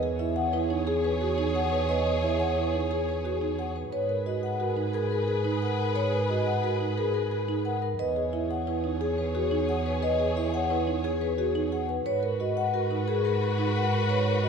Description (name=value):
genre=classical, minimalist pattern music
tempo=177 BPM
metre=6/4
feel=straight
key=unclear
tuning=A4 = 441 Hz
part: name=vibraphone with medium mallets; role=melody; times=0.0-14.5 s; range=G#4 to F#5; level=-30 LUFS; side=left 8 dB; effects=none
part: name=warm French horn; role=second line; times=0.0-14.5 s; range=B4 to C#5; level=-34 LUFS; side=right 3 dB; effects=none
part: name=dark symphonic string section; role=sustained chords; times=0.0-14.5 s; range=F#4 to C#5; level=-35 LUFS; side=left 4 dB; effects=none
part: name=marimba with soft mallets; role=arpeggios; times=0.0-14.5 s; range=D#4 to B4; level=-31 LUFS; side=right 9 dB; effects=none
part: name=dark double bass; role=bass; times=0.0-14.5 s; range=E2 to G#2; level=-30 LUFS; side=right 2 dB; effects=none
room=moderate scoring stage reverb, RT60 1.9 s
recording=none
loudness=-25 LUFS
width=side -6 dB against mid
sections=0.0-14.5 A section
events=none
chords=0.0 E69; 3.9 G#m9; 8.0 E69; 12.1 G#m9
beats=0.19 0.53 0.87 1.21 1.55 | 1.89 2.23 2.57 2.90 3.24 3.58 | 3.92 4.26 4.60 4.94 5.28 5.62 | 5.96 6.29 6.63 6.97 7.31 7.65 | 7.99 8.33 8.67 9.01 9.35 9.69 | 10.02 10.36 10.70 11.04 11.38 11.72 | 12.06 12.40 12.74 13.07 13.41 13.75 | 14.09 14.43